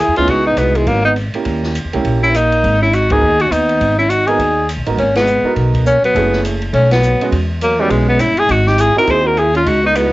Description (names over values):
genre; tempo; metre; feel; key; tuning
jazz, small-group swing and bop; 205 BPM; 4/4; swing 60% on 8ths; G# minor; A4 = 441 Hz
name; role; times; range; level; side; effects
clear tenor saxophone; melody; 0.0-10.1 s; G3 to B#4; -13 LUFS; left 1 dB; none
mellow trombone; second line; 0.0-10.1 s; D#3 to G#4; -22 LUFS; right 4 dB; cassette tape
upright bass; bass; 0.0-10.1 s; F#1 to E2; -17 LUFS; equal; none
warm baby grand piano; accompaniment; 0.2-10.1 s; G#2 to A#4; -20 LUFS; right 5 dB; cassette tape
open jazz drum kit; drums; 0.2-10.0 s; hi-hat, kick drum, ride cymbal, snare drum; -25 LUFS; equal; cassette tape
room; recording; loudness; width
moderate small room reverb, RT60 0.6 s; home recording on cassette, nothing above 7.9 kHz; -12 LUFS; side -18 dB against mid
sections
0.0-5.0 A section; 5.0-10.1 A section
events
band accent 3.1, 5.1, 6.9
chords
0.3 C#m11; 1.5 D#7b9; 2.6 G#m9; 6.1 F#m7; 6.7 Bsus2; 7.3 E69; 8.5 G#7b13